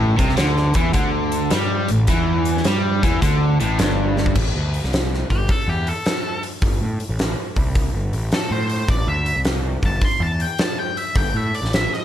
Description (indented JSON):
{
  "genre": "blues rock power trio and southern rock",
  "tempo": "106 BPM",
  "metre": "4/4",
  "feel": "swing 66% on 8ths",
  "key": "A minor",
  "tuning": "A4 = 440 Hz",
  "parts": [
    { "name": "crunchy overdriven guitar", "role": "riff", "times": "0.0-4.3 s", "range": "G2 to G3", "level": "-19 LUFS", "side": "equal", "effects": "none" },
    { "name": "fuzz picked electric bass", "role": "bass", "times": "0.0-11.9 s", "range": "G1 to A2", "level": "-22 LUFS", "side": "equal", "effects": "overdrive" },
    { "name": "huge arena drum kit", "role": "drums", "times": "0.2-12.0 s", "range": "crash cymbal, hi-hat, kick drum, snare drum", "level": "-22 LUFS", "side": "equal", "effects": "none" },
    { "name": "octave-fuzz lead guitar", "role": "melody", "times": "5.3-12.0 s", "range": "G4 to C6", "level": "-24 LUFS", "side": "left 1 dB", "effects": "distortion" }
  ],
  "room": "small room ambience",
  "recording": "lossy compression artefacts",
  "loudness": "-17 LUFS",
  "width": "side -11 dB against mid",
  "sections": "0.0-4.4 A section; 4.4-12.0 B section",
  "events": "drum fill 4.1; lead electric guitar solo 4.4-12.0",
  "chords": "0.0 A5; 4.4 Am",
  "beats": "0.38 0.95 1.51 | 2.08 2.65 3.22 3.78 | 4.35 4.92 5.49 6.05 | 6.62 7.19 7.76 8.33 | 8.89 9.46 10.03 10.60 | 11.16 11.73"
}